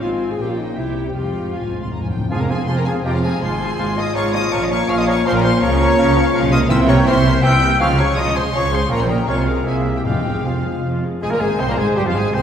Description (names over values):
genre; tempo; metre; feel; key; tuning
quick classical-period movement for symphony orchestra; 152-167 BPM; 3/4; rubato; F minor; A4 = 440 Hz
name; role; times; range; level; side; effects
rich chamber violin section; melody; 0.0-12.4 s; F5 to G6; -27 LUFS; left 4 dB; none
mellow hollow silver concert flute; second line; 0.0-12.4 s; C5 to E6; -28 LUFS; left 1 dB; none
rich symphonic violin section; second line; 0.0-12.4 s; F4 to Bb5; -32 LUFS; left 2 dB; none
warm clarinet; second line; 0.0-12.4 s; Eb4 to G5; -24 LUFS; left 2 dB; none
rich chamber viola section; accompaniment; 0.0-12.4 s; F3 to C5; -26 LUFS; right 1 dB; none
mellow French horn section; sustained chords; 0.0-12.4 s; F3 to F4; -25 LUFS; left 3 dB; none
clear studio double bass section; bass; 0.0-12.4 s; F1 to Db2; -21 LUFS; right 1 dB; none
rich chamber cello section; bass; 0.0-12.4 s; F2 to Db3; -23 LUFS; right 2 dB; none
timpani; percussion; 1.1-2.2, 6.7-7.2, 10.1-10.6 s; F2 to C3; -26 LUFS; left 1 dB; none
clear oboe; second line; 2.3-12.4 s; F4 to F5; -30 LUFS; right 1 dB; none
clear bassoon; accompaniment; 2.3-12.4 s; E3 to C4; -28 LUFS; right 1 dB; none
mellow trumpet; stabs; 2.3-10.8 s; F4 to G5; -25 LUFS; right 1 dB; none
room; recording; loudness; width
wet scoring stage reverb, RT60 1.5 s; heard from further back in the room; -15 LUFS; side -8 dB against mid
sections
0.0-2.3 A section; 2.3-11.2 B section; 11.2-12.4 B section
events
timpani fill 1.2-2.3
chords
0.0 Fm/Ab; 0.4 Gm7b5/Bb; 0.8 C; 1.2 Fm; 3.4 Fm/Ab; 4.5 Bbm; 5.6 Bbm/Db; 6.7 C7; 7.8 Db; 8.9 Bbm; 9.3 Fm/C; 9.7 C7; 10.1 Fm; 11.2 Fm/Ab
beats
| 0.01 0.39 0.77 | 1.15 1.54 1.93 | 2.31 2.69 3.06 | 3.42 3.79 4.16 | 4.53 4.89 5.25 | 5.62 5.98 6.34 | 6.71 7.07 7.44 | 7.80 8.17 8.54 | 8.91 9.29 9.67 | 10.06 10.45 10.84 | 11.23 11.61 11.98 | 12.35